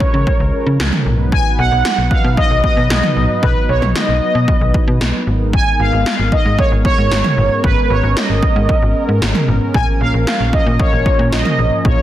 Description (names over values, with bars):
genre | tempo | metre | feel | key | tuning
synth-pop | 114 BPM | 4/4 | straight | unclear | A4 = 438 Hz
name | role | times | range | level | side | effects
analog synth brass | melody | 0.0-12.0 s | Cb5 to Ab5 | -18 LUFS | right 1 dB | chorus, digital delay
warm analog pad | sustained chords | 0.0-12.0 s | F3 to Cb5 | -22 LUFS | right 1 dB | chorus
80s electronic pad drums | drums | 0.0-12.0 s | kick drum, snare drum, toms | -16 LUFS | equal | gated reverb on snare and toms
slap-like FM bass | bass | 0.1-12.0 s | Ab1 to Db3 | -16 LUFS | equal | none
room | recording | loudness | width
light reverb, digital ambience | dense, heavily limited modern master | -12 LUFS | side -12 dB against mid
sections
0.0-12.0 A section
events
none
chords
0.0 Db; 1.1 Cb; 5.3 Abmadd9; 9.7 Bbm